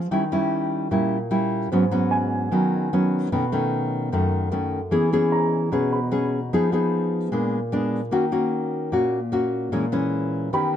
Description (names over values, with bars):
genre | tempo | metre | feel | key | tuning
bossa nova | 150 BPM | 4/4 | straight | Eb minor | A4 = 440 Hz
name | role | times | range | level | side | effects
nylon-string guitar | accompaniment | 0.0-10.8 s | F#2 to G#4 | -21 LUFS | left 1 dB | none
dark grand piano | accompaniment | 2.1-6.7, 10.5-10.8 s | Ab5 to B5 | -29 LUFS | right 4 dB | none
room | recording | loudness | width
little or no reverb | close, detailed microphones | -20 LUFS | side -9 dB against mid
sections
0.0-10.8 A section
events
none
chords
0.1 Eb7b9; 1.7 Abm7; 3.3 B9; 4.9 E6; 6.5 Fm7b5; 7.3 Bb7b9; 8.1 Ebm7; 9.7 Bbm7b5